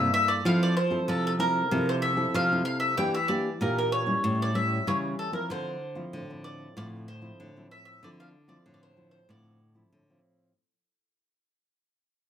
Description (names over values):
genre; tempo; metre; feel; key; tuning
samba and choro; 95 BPM; 4/4; straight; D minor; A4 = 440 Hz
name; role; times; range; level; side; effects
bowl-back mandolin; melody; 0.0-10.2 s; A4 to G5; -28 LUFS; equal; plate reverb
nylon-string guitar; accompaniment; 0.0-10.5 s; G2 to A4; -30 LUFS; equal; none
nylon-string guitar; bass; 0.0-10.2 s; A2 to F3; -31 LUFS; right 1 dB; none
room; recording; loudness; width
moderate studio reverb, RT60 0.8 s; none; -24 LUFS; side -9 dB against mid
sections
0.0-10.6 A section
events
fade-out 0.0-10.6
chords
0.5 Fmaj7; 3.0 Em7b5; 4.2 A7; 5.5 Dm9